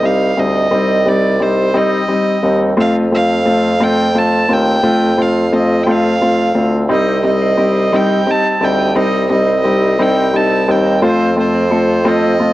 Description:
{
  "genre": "six-eight pop ballad",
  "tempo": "58 BPM (dotted quarters)",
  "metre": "6/8",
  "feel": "straight",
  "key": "C dorian",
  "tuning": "A4 = 440 Hz",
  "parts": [
    { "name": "warm violin", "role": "melody", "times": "0.0-12.5 s", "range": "C5 to A5", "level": "-18 LUFS", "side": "right 2 dB", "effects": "cassette tape" },
    { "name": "warm grand piano", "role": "accompaniment", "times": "0.0-12.5 s", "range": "G3 to F4", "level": "-14 LUFS", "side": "left 1 dB", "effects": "cassette tape" },
    { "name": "warm bassoon", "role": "bass", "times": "0.0-12.5 s", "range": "C2 to F2", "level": "-16 LUFS", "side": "equal", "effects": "none" },
    { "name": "direct-recorded clean electric guitar", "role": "arpeggios", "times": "6.9-12.5 s", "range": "F3 to A4", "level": "-24 LUFS", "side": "right 6 dB", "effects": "phaser, cassette tape" }
  ],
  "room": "light reverb",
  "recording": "home recording on cassette",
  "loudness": "-11 LUFS",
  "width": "side -16 dB against mid",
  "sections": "0.0-12.5 A section",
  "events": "none",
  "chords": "0.0 Cm; 2.8 F; 6.9 Cm; 11.0 F"
}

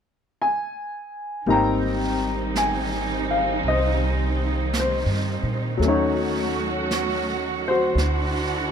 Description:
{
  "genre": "jazz ballad",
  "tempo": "55 BPM",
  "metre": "4/4",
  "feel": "swing 67% on 8ths",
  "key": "Ab major",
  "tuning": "A4 = 440 Hz",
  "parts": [
    { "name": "warm baby grand piano", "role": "accompaniment", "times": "0.4-8.7 s", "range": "Gb3 to Bb5", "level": "-24 LUFS", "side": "left 3 dB", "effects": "none" },
    { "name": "warm studio string section", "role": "sustained chords", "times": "1.5-8.7 s", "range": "D3 to Gb4", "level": "-27 LUFS", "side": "right 4 dB", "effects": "none" },
    { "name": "upright bass", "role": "bass", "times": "1.5-8.7 s", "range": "Ab1 to Bb2", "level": "-26 LUFS", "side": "right 1 dB", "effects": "none" },
    { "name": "jazz brush drum kit", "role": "drums", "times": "1.5-8.7 s", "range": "brushed snare drum, hi-hat, snare drum", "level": "-33 LUFS", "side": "right 4 dB", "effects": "none" }
  ],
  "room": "light reverb",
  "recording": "none",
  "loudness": "-21 LUFS",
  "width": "side -7 dB against mid",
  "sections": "0.0-1.5 A section; 1.5-8.7 B section",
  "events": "none",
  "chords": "0.0 N.C.; 1.5 Abmaj7; 5.8 Ebm7b5; 8.0 D9"
}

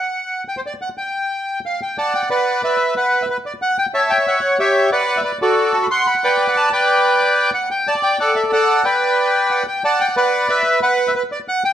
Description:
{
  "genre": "tango",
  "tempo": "183 BPM",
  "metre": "3/4",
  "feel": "rubato",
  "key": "unclear",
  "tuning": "A4 = 440 Hz",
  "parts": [
    { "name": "bandoneon", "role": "solo", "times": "0.0-11.7 s", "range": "F#4 to C6", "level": "-15 LUFS", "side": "equal", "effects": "none" }
  ],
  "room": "wet studio reverb, RT60 0.9 s",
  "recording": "heard from further back in the room",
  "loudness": "-15 LUFS",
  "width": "side -10 dB against mid",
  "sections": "0.0-2.0 A section; 2.0-9.8 B section; 9.8-11.7 B section",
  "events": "none",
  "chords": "0.0 N.C.; 2.0 Bmadd11; 3.0 N.C.; 3.9 Em69; 4.9 D6; 5.6 D; 5.9 Bm; 6.9 Gmaj7/B; 7.9 N.C.; 8.2 D; 8.8 G; 9.8 Bmadd11; 10.8 N.C."
}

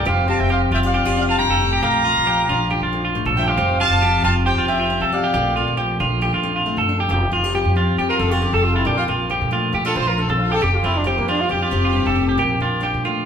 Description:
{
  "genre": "highlife",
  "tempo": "136 BPM",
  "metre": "4/4",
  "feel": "straight",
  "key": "F major",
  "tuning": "A4 = 445 Hz",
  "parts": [
    { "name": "warm horn section", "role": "melody", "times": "0.0-12.8 s", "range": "Bb3 to Bb5", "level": "-21 LUFS", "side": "right 1 dB", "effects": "none" },
    { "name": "picked steel-string acoustic guitar", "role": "accompaniment", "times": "0.0-13.3 s", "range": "F2 to A4", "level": "-24 LUFS", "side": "left 4 dB", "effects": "none" },
    { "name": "clean electric guitar", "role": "arpeggios", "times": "0.0-13.3 s", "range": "C4 to A4", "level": "-21 LUFS", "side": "right 2 dB", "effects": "none" },
    { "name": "upright bass", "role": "bass", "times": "0.0-13.2 s", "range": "F1 to Bb2", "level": "-22 LUFS", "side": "equal", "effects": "none" }
  ],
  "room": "wet large studio reverb, RT60 1.4 s",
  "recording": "band playing live in one room",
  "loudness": "-16 LUFS",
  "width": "side -8 dB against mid",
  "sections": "0.0-7.1 A section; 7.1-13.3 B section",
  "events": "horn section solo 7.1-13.3",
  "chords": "0.1 Fsus2; 1.8 Bbmaj7; 3.6 Fsus2; 5.3 Bbmaj7; 7.1 Fsus2; 8.9 Bbmaj7; 10.6 Fsus2; 12.4 Bbmaj7"
}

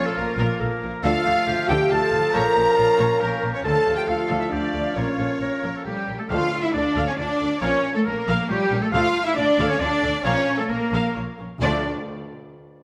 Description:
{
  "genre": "cinematic, heroic adventure film score",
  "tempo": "137 BPM",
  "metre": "3/4",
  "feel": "straight",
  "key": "D harmonic minor",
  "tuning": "A4 = 440 Hz",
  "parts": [
    { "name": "warm symphonic violin section", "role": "melody", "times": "0.0-11.9 s", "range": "G4 to Bb5", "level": "-33 LUFS", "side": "equal", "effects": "none" },
    { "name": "bright silver concert flute", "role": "second line", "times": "0.0-11.9 s", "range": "G4 to Bb5", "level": "-31 LUFS", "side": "equal", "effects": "none" },
    { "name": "clear oboe", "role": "second line", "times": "0.0-11.8 s", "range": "F4 to F5", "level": "-32 LUFS", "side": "equal", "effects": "none" },
    { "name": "warm clarinet", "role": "second line", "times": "0.0-5.8 s", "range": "A4 to Bb5", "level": "-32 LUFS", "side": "equal", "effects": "none" },
    { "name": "warm symphonic violin section", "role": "second line", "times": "0.0-11.9 s", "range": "G4 to Bb5", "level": "-37 LUFS", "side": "equal", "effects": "none" },
    { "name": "warm symphonic viola section", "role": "accompaniment", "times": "0.0-11.9 s", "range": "Db4 to F5", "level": "-34 LUFS", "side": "equal", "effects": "none" },
    { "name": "mellow French horn section", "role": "sustained chords", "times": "0.0-11.8 s", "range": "A3 to F5", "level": "-26 LUFS", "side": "equal", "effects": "none" },
    { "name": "warm trombone section", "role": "sustained chords", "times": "0.0-11.8 s", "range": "F3 to Db4", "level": "-34 LUFS", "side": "equal", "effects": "none" },
    { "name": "warm symphonic cello section", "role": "bass", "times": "0.0-11.9 s", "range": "Bb2 to F4", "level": "-29 LUFS", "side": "equal", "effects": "none" },
    { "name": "warm symphonic double bass section", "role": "bass", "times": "0.0-11.9 s", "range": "Bb1 to D2", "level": "-31 LUFS", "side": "equal", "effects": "none" },
    { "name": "timpani", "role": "percussion", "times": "6.3-6.9, 11.6-11.8 s", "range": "D3", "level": "-37 LUFS", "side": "equal", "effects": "none" }
  ],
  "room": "wet scoring stage reverb, RT60 1.8 s",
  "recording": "none",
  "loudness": "-22 LUFS",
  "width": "mono",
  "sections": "0.0-6.3 A section; 6.3-11.6 B section; 11.6-12.8 C section",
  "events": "slowing down 8.3-11.6",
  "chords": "0.0 Bb5; 1.0 Dm; 2.3 Bbm; 3.6 Dm; 5.0 Bbm; 6.3 Dm; 7.6 Bbm; 8.9 Dm; 10.2 Bbm; 11.6 Dm"
}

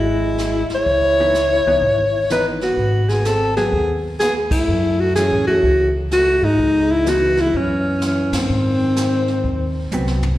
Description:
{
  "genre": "jazz, small-group swing and bop",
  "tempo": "126 BPM",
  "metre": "4/4",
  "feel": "swing 66% on 8ths",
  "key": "C# minor",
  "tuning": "A4 = 440 Hz",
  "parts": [
    { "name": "clear alto saxophone", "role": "melody", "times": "0.0-9.9 s", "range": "B#3 to C#5", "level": "-17 LUFS", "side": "left 1 dB", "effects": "none" },
    { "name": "breathy trombone", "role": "second line", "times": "0.0-9.9 s", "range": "D#3 to E4", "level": "-26 LUFS", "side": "right 2 dB", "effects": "slapback echo" },
    { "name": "upright bass", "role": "bass", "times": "0.0-10.4 s", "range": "G#1 to A2", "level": "-22 LUFS", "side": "equal", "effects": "none" },
    { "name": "jazz brush drum kit", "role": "drums", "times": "0.4-10.4 s", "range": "brushed snare drum, hi-hat, kick drum, ride cymbal, snare drum, toms", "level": "-27 LUFS", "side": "equal", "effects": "none" },
    { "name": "vintage hollow-body jazz guitar", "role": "accompaniment", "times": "1.2-10.2 s", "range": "E3 to D#4", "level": "-25 LUFS", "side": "right 1 dB", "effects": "slapback echo" }
  ],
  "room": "moderate digital room reverb, RT60 1.0 s, small room ambience",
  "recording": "live gig heard through the venue's PA, recital hall reverb, lossy compression artefacts",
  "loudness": "-15 LUFS",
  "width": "side -14 dB against mid",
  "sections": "0.0-10.4 A section",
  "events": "band accent 4.4, 8.3; drum fill 9.9-10.4",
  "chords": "0.0 C#m9; 2.8 G#m; 4.7 F#m7; 6.6 C#m9; 7.5 F#5; 8.5 G#7#9"
}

